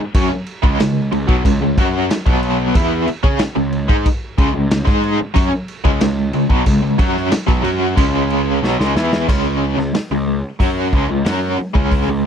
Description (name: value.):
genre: classic rock.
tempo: 92 BPM.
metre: 4/4.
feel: straight.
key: unclear.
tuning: A4 = 440 Hz.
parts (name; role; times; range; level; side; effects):
cranked stack guitar; riff; 0.0-12.2 s; Cb3 to Ab4; -17 LUFS; equal; overdrive, tremolo.
fuzz picked electric bass; bass; 0.0-12.2 s; Cb2 to Db3; -21 LUFS; equal; overdrive.
raw garage drum kit; drums; 0.1-12.1 s; crash cymbal, hi-hat, kick drum, snare drum; -18 LUFS; equal; none.
room: little or no reverb.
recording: dry, close 1970s-style studio recording.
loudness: -14 LUFS.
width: side -8 dB against mid.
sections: 0.0-9.3 A section; 9.3-12.3 B section.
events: drum fill 8.6-9.3.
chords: 0.0 Db5.